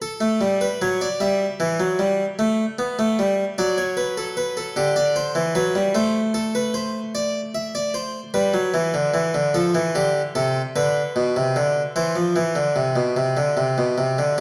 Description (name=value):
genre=classical, baroque-style two-part invention for harpsichord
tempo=50 BPM (dotted quarters)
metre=6/8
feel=straight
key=G major, C major from 9.5 s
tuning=A4 = 441 Hz
part: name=harpsichord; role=solo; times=0.0-14.4 s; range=B2 to E5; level=-22 LUFS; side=equal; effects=none
room=moderate recital hall reverb, RT60 1.6 s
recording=vinyl crackle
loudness=-22 LUFS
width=mono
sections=0.0-9.5 A section; 9.5-14.4 B section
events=none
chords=0.0 D; 1.2 Em; 2.4 A5; 3.6 D/F#; 4.8 G/D; 5.9 Am; 7.1 D5/A; 8.3 G; 9.5 Dm; 10.8 Bm; 12.0 C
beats=| 0.02 1.20 | 2.39 3.57 | 4.76 5.94 | 7.14 8.34 | 9.54 10.75 | 11.95 13.17 | 14.38